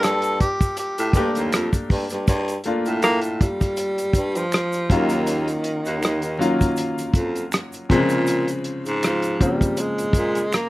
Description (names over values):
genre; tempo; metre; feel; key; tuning
R&B, neo-soul; 80 BPM; 4/4; swing 55% on 16ths; G minor; A4 = 440 Hz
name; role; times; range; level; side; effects
breathy tenor saxophone; melody; 0.0-10.7 s; Eb3 to A4; -24 LUFS; equal; none
clear concert grand piano; accompaniment; 0.0-10.7 s; C3 to G4; -24 LUFS; left 1 dB; none
raspy baritone saxophone; bass; 0.0-10.4 s; Eb2 to Bb2; -24 LUFS; equal; none
warm soul drum kit; drums; 0.0-10.7 s; hi-hat, kick drum, rim click; -21 LUFS; equal; none
finger snaps and tube shaker; percussion; 0.0-10.7 s; none; -36 LUFS; right 4 dB; none
room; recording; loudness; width
light reverb; rough home demo mix, vinyl crackle; -19 LUFS; side -18 dB against mid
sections
0.0-2.3 A section; 2.3-10.7 A section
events
none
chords
0.0 Gm9; 4.9 Ebm9; 7.9 Bbm9